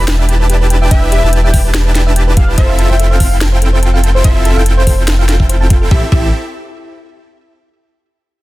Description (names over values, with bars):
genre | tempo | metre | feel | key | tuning
future bass | 144 BPM | 4/4 | swing 54% on 16ths, half-time | A minor | A4 = 441 Hz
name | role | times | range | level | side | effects
thumb-piano-like synth pluck | arpeggios | 0.0-6.3 s | G4 to A5 | -24 LUFS | right 4 dB | chorus, sidechain pumping, digital delay
wide unison pluck | arpeggios | 0.0-6.3 s | E5 to A5 | -27 LUFS | equal | sidechain pumping, digital delay
supersaw chords | riff | 0.0-6.3 s | C4 to A5 | -18 LUFS | right 1 dB | sidechain pumping
saturated sub bass | bass | 0.0-6.3 s | E1 to A1 | -12 LUFS | equal | sidechain pumping
trap drum kit | drums | 0.1-5.8 s | hi-hat, snare drum | -19 LUFS | left 1 dB | studio reverb
warm velvety synth lead | melody | 0.8-6.3 s | E4 to G5 | -22 LUFS | left 2 dB | chorus, sidechain pumping, digital delay
electronic kick drum | drums | 0.9-6.2 s | none | -10 LUFS | equal | studio reverb
room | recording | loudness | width
little or no reverb | dense, heavily limited modern master | -9 LUFS | side -18 dB against mid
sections
0.0-5.9 A section; 5.9-7.6 B section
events
drop 0.0-5.9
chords
0.0 Em7; 2.6 Fmaj7; 5.9 Am7